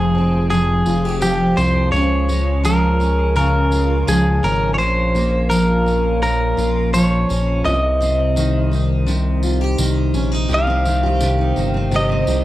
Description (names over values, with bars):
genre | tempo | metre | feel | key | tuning
acoustic pop | 84 BPM | 4/4 | straight | unclear | A4 = 440 Hz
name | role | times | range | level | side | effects
direct-recorded clean electric guitar | melody | 0.0-12.4 s | G4 to F5 | -20 LUFS | equal | cassette tape
picked steel-string acoustic guitar | accompaniment | 0.0-12.4 s | F2 to G4 | -19 LUFS | equal | double-tracked left and right, cassette tape
round analog bass | bass | 0.0-12.4 s | F1 to Db2 | -19 LUFS | equal | none
tambourine | percussion | 0.5-12.4 s | none | -32 LUFS | right 2 dB | none
room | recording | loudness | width
studio reverb | home recording on cassette | -15 LUFS | side -15 dB against mid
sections
0.0-10.5 A section; 10.5-12.4 B section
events
none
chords
0.0 Fmadd9; 1.9 Db; 4.8 Bbm; 7.7 Cm